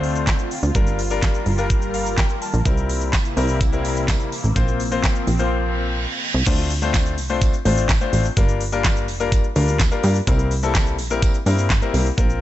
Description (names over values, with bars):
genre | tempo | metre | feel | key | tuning
dance-pop | 126 BPM | 4/4 | straight | unclear | A4 = 440 Hz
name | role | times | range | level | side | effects
bright concert grand piano | accompaniment | 0.0-12.4 s | G3 to A5 | -24 LUFS | left 6 dB | sidechain pumping
lush unison pad | sustained chords | 0.0-6.4 s | C3 to Bb4 | -28 LUFS | equal | chorus, phaser, sidechain pumping
plucky analog bass | bass | 0.0-12.4 s | F1 to G2 | -22 LUFS | right 1 dB | sidechain pumping
pop drum kit | drums | 0.0-12.4 s | crash cymbal, handclaps, hi-hat, kick drum, shaker, snare drum | -21 LUFS | right 1 dB | none
tambourine | percussion | 2.7-12.1 s | none | -38 LUFS | right 13 dB | none
reverse cymbal | sound effects | 5.7-6.5 s | none | -27 LUFS | right 4 dB | none
room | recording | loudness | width
digital ambience | nothing above 8.0 kHz | -17 LUFS | side -14 dB against mid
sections
0.0-6.5 A section; 6.5-12.4 B section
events
grand piano fill 1.7-2.7; break 5.5-6.5; reverse cymbal 5.7-6.5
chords
0.0 Dm7; 0.8 Gm7; 2.7 C7; 4.6 Bbsus2; 6.5 Dm7; 8.4 Gm7; 10.3 C7